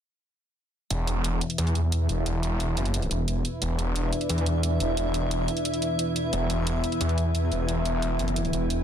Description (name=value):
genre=dark technical drum and bass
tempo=177 BPM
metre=4/4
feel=straight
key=E minor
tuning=A4 = 440 Hz
part: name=dark analog pad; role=sustained chords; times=0.9-8.8 s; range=E3 to E5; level=-31 LUFS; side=left 2 dB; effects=chorus
part: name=snarling distorted saw bass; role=bass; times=0.9-8.8 s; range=E1 to E2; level=-26 LUFS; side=equal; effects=distortion, overdrive
part: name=electronic hi-hat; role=drums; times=0.9-8.8 s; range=none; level=-34 LUFS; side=right 2 dB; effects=none
part: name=granular cloud pad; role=texture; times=2.7-8.8 s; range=E4 to G5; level=-31 LUFS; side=right 1 dB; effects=built-in reverb
room=digital ambience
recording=dense, heavily limited modern master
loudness=-24 LUFS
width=side -9 dB against mid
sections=0.9-8.8 A section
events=none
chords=0.9 E5